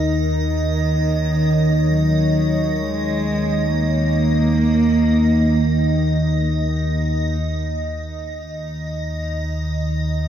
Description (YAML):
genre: dark ambient drone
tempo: free time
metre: none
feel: none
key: unclear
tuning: A4 = 440 Hz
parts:
  - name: deep dark ambient pad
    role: sustained chords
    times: 0.0-7.4 s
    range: Eb4 to Db5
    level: -29 LUFS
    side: left 3 dB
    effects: chorus, built-in reverb
  - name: analog drone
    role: drone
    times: 0.0-10.3 s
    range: Eb2 to Eb3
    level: -19 LUFS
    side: equal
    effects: chorus
  - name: icy glass pad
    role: texture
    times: 0.0-10.3 s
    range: Eb5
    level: -26 LUFS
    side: right 3 dB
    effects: chorus, built-in reverb
  - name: dark cello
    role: melody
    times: 0.1-6.5 s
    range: Eb3 to Bb3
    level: -21 LUFS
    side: right 2 dB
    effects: tape echo
room: wet cathedral reverb, RT60 4.9 s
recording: in a vast, echoing space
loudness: -17 LUFS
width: side -10 dB against mid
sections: 0.0-7.4 A section; 7.4-10.3 A section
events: fade-out on ambient pad 0.0-7.4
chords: 0.0 Eb5; 7.4 N.C.